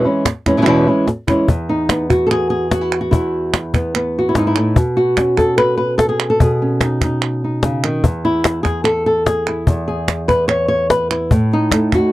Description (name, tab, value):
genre	flamenco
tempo	147 BPM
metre	4/4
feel	straight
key	E major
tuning	A4 = 440 Hz
part	flamenco guitar	melody	0.0-12.1 s	E2 to C#5	-15 LUFS	equal	none
part	cajon	percussion	0.3-12.1 s	none	-16 LUFS	left 2 dB	none
part	palmas hand claps	percussion	0.3-12.1 s	none	-21 LUFS	right 9 dB	none
room	little or no reverb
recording	dry, close 1970s-style studio recording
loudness	-14 LUFS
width	side -16 dB against mid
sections	0.0-1.5 A section; 1.5-12.1 B section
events	drum fill 1.1-1.5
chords	0.0 E6; 1.5 E; 4.8 Badd9; 8.0 N.C.; 11.3 A5